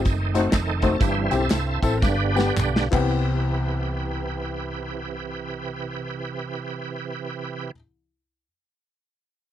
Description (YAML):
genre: uptempo gospel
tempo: 100-131 BPM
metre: 4/4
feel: swing 62% on 8ths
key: C major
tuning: A4 = 441 Hz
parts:
  - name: bright tonewheel organ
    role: sustained chords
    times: 0.0-7.7 s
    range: C3 to B4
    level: -28 LUFS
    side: right 5 dB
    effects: slow rotary speaker, chorus vibrato
  - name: hollow-body short-scale fingered electric bass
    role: bass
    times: 0.0-7.7 s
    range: F1 to C2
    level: -27 LUFS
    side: equal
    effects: none
  - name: natural country drum kit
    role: drums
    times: 0.1-3.0 s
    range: crash cymbal, hi-hat, kick drum, snare drum, toms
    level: -24 LUFS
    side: equal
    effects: none
  - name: tambourine and handclaps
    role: percussion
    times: 0.1-3.5 s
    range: none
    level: -37 LUFS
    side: left 1 dB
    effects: none
  - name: dark baby grand piano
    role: accompaniment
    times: 0.3-7.7 s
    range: C2 to C5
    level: -26 LUFS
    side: left 4 dB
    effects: none
room: little or no reverb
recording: dry, close 1970s-style studio recording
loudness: -22 LUFS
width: side -11 dB against mid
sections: 0.0-3.2 A section; 3.2-7.9 B section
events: slowing down 0.0-3.2; tonewheel organ solo 0.0-3.2; drum fill 2.0-3.2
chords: 0.1 F#dim7; 1.0 C/G; 2.0 G; 2.9 Cmaj7